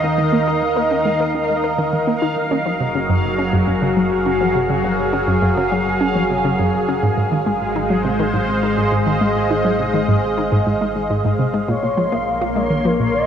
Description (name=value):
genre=ambient, sequencer-driven space music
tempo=103 BPM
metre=4/4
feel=straight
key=unclear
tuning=A4 = 442 Hz
part: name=lush unison pad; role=sustained chords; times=0.0-13.3 s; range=Eb3 to Eb5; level=-19 LUFS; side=equal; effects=chorus, phaser
part: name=analog pluck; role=riff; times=0.0-13.1 s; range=Gb2 to Bb4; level=-20 LUFS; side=equal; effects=chorus, ping-pong delay
part: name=analog drone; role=bass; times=0.0-13.3 s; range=Gb1 to Eb2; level=-30 LUFS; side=equal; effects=chorus
part: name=bubbling stepped-filter texture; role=texture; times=0.0-13.3 s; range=F5 to C6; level=-26 LUFS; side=right 2 dB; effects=chorus, built-in reverb
part: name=expressive synth lead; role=melody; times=11.7-13.3 s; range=Bb4 to F5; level=-21 LUFS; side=left 1 dB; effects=ensemble chorus, ping-pong delay
room=wet huge ambient reverb, RT60 7.3 s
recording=worn, warbling old tape, cassette tape, warbly pitch drift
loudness=-16 LUFS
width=side -8 dB against mid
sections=0.0-13.3 A section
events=fade-in on synth drone 0.0-13.3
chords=0.0 Eb5; 2.4 Gbadd9; 7.0 Ab; 11.7 Bbm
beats=| 0.04 0.62 1.20 1.78 | 2.37 2.95 3.53 4.11 | 4.70 5.28 5.86 6.44 | 7.03 7.61 8.19 8.77 | 9.36 9.94 10.52 11.10 | 11.69 12.27 12.85